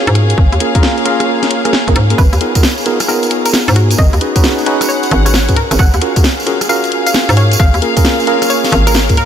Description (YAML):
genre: UK garage, two-step garage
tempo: 133 BPM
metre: 4/4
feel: swing 65% on 16ths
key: unclear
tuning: A4 = 440 Hz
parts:
  - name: bright tine electric piano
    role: stabs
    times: 0.0-9.2 s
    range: A#3 to B4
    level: -16 LUFS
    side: right 1 dB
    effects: medium stereo tremolo, ping-pong delay
  - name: dark studio string section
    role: texture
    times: 0.0-9.3 s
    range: G#4 to F#5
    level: -20 LUFS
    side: left 3 dB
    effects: sidechain pumping
  - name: hollow knocking FM bass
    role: bass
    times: 0.1-9.2 s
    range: G#1 to G#2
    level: -12 LUFS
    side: equal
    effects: sidechain pumping
  - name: garage drum kit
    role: drums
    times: 0.1-9.3 s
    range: hi-hat, rim click, snare drum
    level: -18 LUFS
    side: equal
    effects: none
  - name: electronic kick drum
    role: drums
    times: 0.4-9.2 s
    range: none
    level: -11 LUFS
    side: equal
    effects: none
  - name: hollow square pluck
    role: melody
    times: 2.2-9.3 s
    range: F#4 to F#5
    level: -20 LUFS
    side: left 1 dB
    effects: chorus, vintage 12-bit sampler grit, tape echo
  - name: tambourine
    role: percussion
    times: 2.2-9.2 s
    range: none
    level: -22 LUFS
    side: right 3 dB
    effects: none
room: moderate huge ambient reverb, RT60 4.0 s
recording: dreamy mix soaked in reverb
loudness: -9 LUFS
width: side -9 dB against mid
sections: 0.0-9.3 A section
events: none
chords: 0.4 A#m7/G#; 2.2 G#m69; 4.0 C#9sus4/G#; 5.8 F#maj9/G#; 7.6 A#m7/G#